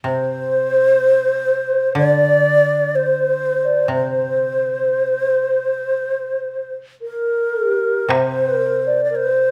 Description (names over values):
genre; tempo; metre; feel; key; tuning
japanese traditional, Japanese chamber music; 54-64 BPM; 4/4; rubato; unclear; A4 = 440 Hz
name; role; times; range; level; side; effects
koto; accompaniment; 0.0-9.5 s; C3 to D3; -28 LUFS; equal; none
breathy mellow long shakuhachi; melody; 0.1-9.5 s; Bb4 to D5; -21 LUFS; equal; none
mellow hollow bansuri; second line; 0.1-9.5 s; Bb4 to D5; -22 LUFS; equal; none
taiko ensemble; percussion; 8.1-8.3 s; none; -27 LUFS; equal; none
room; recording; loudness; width
light reverb; none; -18 LUFS; mono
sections
0.0-8.1 A section; 8.1-9.5 B section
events
none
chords
none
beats
| 0.04 0.99 1.96 2.93 | 3.91 4.91 5.94 7.02 | 8.11 9.14